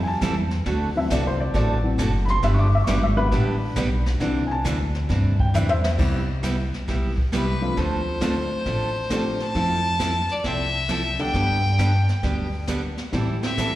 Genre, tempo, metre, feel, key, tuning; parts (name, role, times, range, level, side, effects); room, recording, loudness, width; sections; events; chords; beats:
country, western swing; 135 BPM; 4/4; swing 67% on 8ths; C major; A4 = 440 Hz
dark upright piano; accompaniment; 0.0-13.8 s; D3 to D6; -26 LUFS; left 2 dB; slapback echo
upright bass; bass; 0.0-13.8 s; F#1 to A2; -23 LUFS; equal
picked steel-string acoustic guitar; accompaniment; 0.2-13.7 s; C3 to A4; -28 LUFS; right 3 dB; slapback echo
jazz brush drum kit; drums; 0.2-13.8 s; brushed snare drum, crash cymbal, hi-hat, kick drum, snare drum, toms; -29 LUFS; equal
clear fiddle; melody; 7.3-13.8 s; B4 to A5; -26 LUFS; left 1 dB; slapback echo
archtop guitar, miked and amplified; second line; 7.3-13.8 s; F3 to F4; -34 LUFS; right 2 dB; slapback echo
light reverb, studio reverb; live gig heard through the venue's PA, recital hall reverb; -20 LUFS; side -15 dB against mid
0.0-6.0 A section; 6.0-13.8 B section
upright piano solo 0.0-6.0; drum fill 5.5-6.0
0.0 Am7; 0.7 D7; 2.4 G; 4.2 Cadd9; 6.0 Cmaj7; 7.8 Dm7; 9.6 Fmaj7; 11.3 G; 13.1 Am7
0.22 | 0.66 1.10 1.55 1.99 | 2.43 2.88 3.32 3.76 | 4.21 4.65 5.10 5.54 | 5.99 6.43 6.88 7.32 | 7.77 8.21 8.66 9.11 | 9.55 10.00 10.45 10.89 | 11.34 11.79 12.23 12.68 | 13.13 13.58